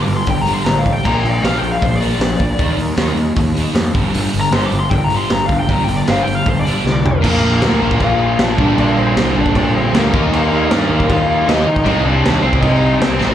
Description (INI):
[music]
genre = punk rock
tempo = 155 BPM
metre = 4/4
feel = straight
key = G minor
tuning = A4 = 438 Hz
[part]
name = lead guitar through a small cranked amp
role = melody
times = 0.0-13.3 s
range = Bb3 to D6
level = -19 LUFS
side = left 2 dB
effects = overdrive, slapback echo, ping-pong delay
[part]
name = sludgy distorted guitar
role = riff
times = 0.0-13.3 s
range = G2 to Eb4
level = -23 LUFS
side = left 8 dB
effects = overdrive, slapback echo
[part]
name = sludgy distorted guitar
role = riff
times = 0.0-13.3 s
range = G2 to Eb4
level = -23 LUFS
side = right 10 dB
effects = overdrive
[part]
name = fuzz picked electric bass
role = bass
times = 0.0-13.3 s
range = G1 to Eb3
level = -18 LUFS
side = equal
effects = overdrive
[part]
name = raw garage drum kit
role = drums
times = 0.1-13.3 s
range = crash cymbal, hi-hat, kick drum, snare drum, toms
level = -18 LUFS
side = equal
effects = none
[part]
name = cranked stack guitar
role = riff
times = 7.2-13.3 s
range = G2 to Eb4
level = -20 LUFS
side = equal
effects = overdrive, slapback echo
[sound]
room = small room reverb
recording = live gig heard through the venue's PA, club reverb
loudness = -12 LUFS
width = side -10 dB against mid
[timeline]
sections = 0.0-7.2 A section; 7.2-13.3 B section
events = lead electric guitar solo 0.0-7.2; drum fill 6.8-7.2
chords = 0.0 G5; 1.0 Bb; 2.6 Eb5; 4.0 G5; 7.2 Bb; 8.6 Gm/Bb; 10.1 Eb5; 11.9 Cm